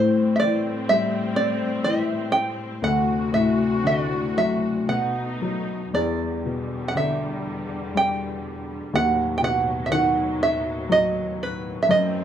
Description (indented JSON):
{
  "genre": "celtic folk, Celtic slow air",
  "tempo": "60 BPM",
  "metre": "3/4",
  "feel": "uneven beats, rubato",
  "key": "E harmonic minor from 5.9 s",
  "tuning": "A4 = 440 Hz",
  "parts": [
    { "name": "open-back banjo", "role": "melody", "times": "0.0-12.2 s", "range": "B4 to G5", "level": "-23 LUFS", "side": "right 3 dB", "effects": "none" },
    { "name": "warm upright piano", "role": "accompaniment", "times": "0.0-12.2 s", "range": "D2 to C4", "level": "-24 LUFS", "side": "left 3 dB", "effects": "none" },
    { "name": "rich symphonic string section", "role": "sustained chords", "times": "0.0-12.2 s", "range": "D2 to F#4", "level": "-31 LUFS", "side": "left 1 dB", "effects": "none" }
  ],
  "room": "moderate large studio reverb, RT60 1.2 s",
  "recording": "band playing live in one room",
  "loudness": "-21 LUFS",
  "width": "side -9 dB against mid",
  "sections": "0.0-5.9 A section; 5.9-12.2 B section",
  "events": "none",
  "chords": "0.0 Am7; 2.8 D7; 4.9 B7; 5.9 Em7; 8.9 B7/D#"
}